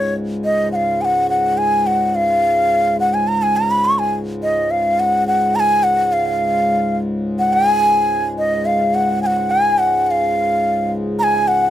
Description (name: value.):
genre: indian classical, Hindustani.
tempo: 106 BPM.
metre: 7/4.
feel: straight.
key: Db raga khamaj.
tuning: A4 = 439 Hz.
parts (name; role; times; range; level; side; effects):
breathy bansuri; melody; 0.0-11.7 s; Db5 to Db6; -15 LUFS; equal; none.
pedal harmonium; drone; 0.0-11.7 s; Db2 to Ab2; -22 LUFS; left 1 dB; none.
celesta; second line; 6.2-11.7 s; Eb5 to Bb5; -26 LUFS; left 4 dB; none.
room: little or no reverb.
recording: close, detailed microphones.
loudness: -14 LUFS.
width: side -12 dB against mid.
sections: 0.0-11.7 A section.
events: none.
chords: none.